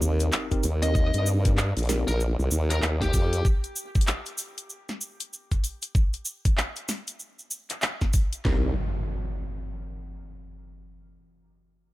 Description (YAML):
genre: glitch hop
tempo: 96 BPM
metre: 4/4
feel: swing 61% on 16ths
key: C minor pentatonic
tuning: A4 = 440 Hz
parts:
  - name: tine electric piano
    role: stabs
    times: 0.0-2.1, 8.4-8.7 s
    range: C4 to Bb4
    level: -33 LUFS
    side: equal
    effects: medium stereo tremolo, sidechain pumping, dub echo
  - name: formant-sweep wobble bass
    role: bass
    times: 0.0-3.4, 8.4-8.7 s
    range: Bb1 to G2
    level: -24 LUFS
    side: equal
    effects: chorus, tube saturation
  - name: cabasa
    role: percussion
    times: 0.0-8.4 s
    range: none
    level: -34 LUFS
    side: right 1 dB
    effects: none
  - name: impact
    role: sound effects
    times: 0.0-0.9, 8.5-11.0 s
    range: none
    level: -33 LUFS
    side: equal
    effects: none
  - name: drum and bass drum kit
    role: drums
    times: 0.2-8.4 s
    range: handclaps, hi-hat, snare drum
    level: -30 LUFS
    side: left 1 dB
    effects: none
  - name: drum and bass drum kit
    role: drums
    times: 0.5-8.6 s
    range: kick drum, snare drum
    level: -23 LUFS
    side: equal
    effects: none
  - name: fuzz lead guitar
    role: melody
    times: 0.8-3.4 s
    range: G4 to Eb5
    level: -33 LUFS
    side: left 2 dB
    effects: distortion, dub echo
room: digital ambience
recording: none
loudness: -24 LUFS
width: side -17 dB against mid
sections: 0.0-8.4 A section; 8.4-10.9 B section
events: impact 0.0-0.9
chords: 0.0 Cm7; 3.5 N.C.; 8.4 Cm7